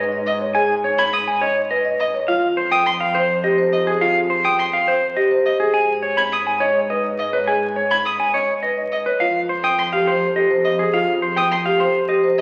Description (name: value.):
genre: classical, minimalist pattern music.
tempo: 104 BPM.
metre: 3/4.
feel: straight.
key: F minor.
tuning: A4 = 440 Hz.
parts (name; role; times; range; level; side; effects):
clean electric guitar; melody; 0.0-12.3 s; Ab4 to Cb6; -22 LUFS; equal; none.
marimba with medium mallets; arpeggios; 0.0-12.4 s; F4 to Eb5; -23 LUFS; equal; none.
rich symphonic double bass section; bass; 0.0-12.4 s; F2 to Ab2; -34 LUFS; equal; none.
rich violin; arpeggios; 0.3-12.4 s; Eb5 to Ab6; -26 LUFS; equal; none.
room: wet recital hall reverb, RT60 1.5 s.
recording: very old 78 rpm record, vinyl crackle.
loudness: -19 LUFS.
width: mono.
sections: 0.0-12.4 A section.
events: none.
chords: 0.0 Abm; 2.3 F7(no3); 5.7 Abm; 9.2 F5.